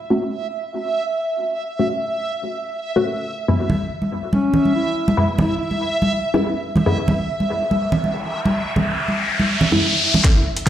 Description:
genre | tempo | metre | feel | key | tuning
deep dubstep | 142 BPM | 4/4 | half-time | unclear | A4 = 440 Hz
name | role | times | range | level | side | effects
backwards swelling texture | texture | 0.0-10.7 s | E5 | -25 LUFS | right 2 dB | built-in reverb
filtered dub chord stab | stabs | 0.1-7.0, 9.7-10.3 s | F#2 to A4 | -21 LUFS | left 1 dB | phaser, analog chorus, dub echo
congas | percussion | 3.7-10.2 s | none | -20 LUFS | right 1 dB | dub echo
dark duduk | melody | 4.3-5.7 s | C#4 to E4 | -22 LUFS | left 1 dB | dub echo
riser | sound effects | 8.0-10.2 s | none | -21 LUFS | left 1 dB | none
deep house drum kit | drums | 10.2-10.7 s | hi-hat, snare drum | -23 LUFS | equal | high-pass filter on hats, high-pass filter on snare, high-pass filter on cymbals
electronic kick drum | drums | 10.2-10.7 s | none | -14 LUFS | equal | none
room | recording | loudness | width
moderate digital room reverb, RT60 0.9 s | played on a big sound system in a bare room, stone room reverb | -17 LUFS | side -11 dB against mid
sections
0.0-10.2 A section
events
riser 8.0-10.2; drum fill 10.2-10.7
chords
0.0 F#m; 3.5 E/F#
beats
| 0.10 0.53 0.95 1.37 | 1.79 2.22 2.64 3.06 | 3.48 3.91 4.33 4.75 | 5.17 5.60 6.02 6.44 | 6.86 7.29 7.71 8.13 | 8.55 8.98 9.40 9.82 | 10.24 10.67

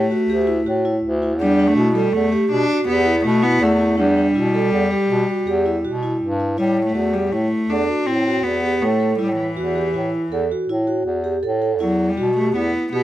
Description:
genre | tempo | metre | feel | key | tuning
contemporary instrumental, chamber music in an uneven meter | 161 BPM | 7/4 | straight | unclear | A4 = 441 Hz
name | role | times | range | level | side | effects
rich cello | melody | 0.0-13.0 s | E3 to D4 | -21 LUFS | left 1 dB | none
clear bass clarinet | bass | 0.0-13.0 s | D2 to B2 | -22 LUFS | left 1 dB | none
vibraphone with soft mallets | arpeggios | 0.1-13.0 s | D4 to A4 | -20 LUFS | right 2 dB | none
room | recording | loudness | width
light reverb | close, detailed microphones | -16 LUFS | side -13 dB against mid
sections
0.0-6.6 A section; 6.6-13.0 A section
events
none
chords
0.0 Dsus2; 1.4 Em; 6.6 A5; 11.8 Em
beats
0.29 0.66 1.03 | 1.40 1.77 2.14 2.51 2.88 3.25 3.62 | 3.99 4.36 4.73 5.10 5.47 5.84 6.21 | 6.58 6.96 7.33 7.70 8.07 8.45 8.82 | 9.19 9.56 9.94 10.31 10.68 11.06 11.43 | 11.80 12.18 12.55 12.93

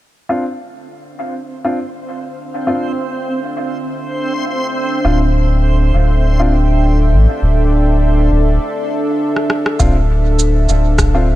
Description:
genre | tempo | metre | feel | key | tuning
ambient dub | 101 BPM | 4/4 | swing 54% on 16ths | D minor | A4 = 440 Hz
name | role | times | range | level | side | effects
warm analog pad | sustained chords | 0.3-11.4 s | D4 to G5 | -20 LUFS | right 1 dB | chorus
dark upright piano | stabs | 0.3-11.3 s | C4 to F4 | -23 LUFS | left 1 dB | low-pass filter, dub echo
backwards swelling texture | texture | 1.3-8.6 s | C4 to C5 | -24 LUFS | right 1 dB | built-in reverb
soft dub sub bass | bass | 5.0-11.4 s | D1 to A1 | -12 LUFS | equal | none
electronic rim click and shaker | drums | 9.4-11.1 s | none | -22 LUFS | right 1 dB | none
electronic kick drum | drums | 9.8-11.1 s | none | -17 LUFS | equal | none
room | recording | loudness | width
digital ambience | none | -13 LUFS | side -15 dB against mid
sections
0.3-9.8 A section; 9.8-11.4 B section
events
filter sweep on analog synth pad 0.3-9.8; break 8.6-9.8; drum fill 9.4-9.8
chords
0.3 Dm7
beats
| 0.29 0.89 1.48 2.08 | 2.67 3.26 3.86 4.45 | 5.05 5.64 6.24 6.83 | 7.42 8.02 8.61 9.21 | 9.80 10.39 10.99

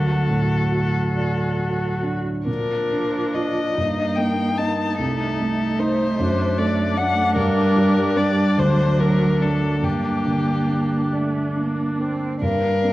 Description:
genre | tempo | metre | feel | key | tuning
classical, slow romantic movement for piano quartet | 44-51 BPM (dotted quarters) | 6/8 | rubato | G minor | A4 = 440 Hz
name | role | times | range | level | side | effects
clear violin | melody | 0.0-12.9 s | G4 to A5 | -24 LUFS | left 4 dB | none
clear cello | second line | 0.0-12.9 s | F3 to D4 | -25 LUFS | right 2 dB | none
clear viola | accompaniment | 0.0-12.2 s | D4 to F#4 | -28 LUFS | right 1 dB | none
dark baby grand piano | accompaniment | 0.0-12.9 s | C2 to Eb5 | -22 LUFS | right 1 dB | none
room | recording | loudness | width
wet recital hall reverb, RT60 1.8 s | worn, warbling old tape, cassette tape, warbly pitch drift | -18 LUFS | side -16 dB against mid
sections
0.0-12.4 A section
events
none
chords
0.0 D; 2.5 Bb; 3.8 Eb/G; 5.0 Adim/C; 6.2 D/F#; 7.4 Gm; 8.6 D; 9.8 Gm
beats
1.16 | 2.47 3.78 | 4.99 6.20 | 7.37 8.57 | 9.84 11.12 | 12.42

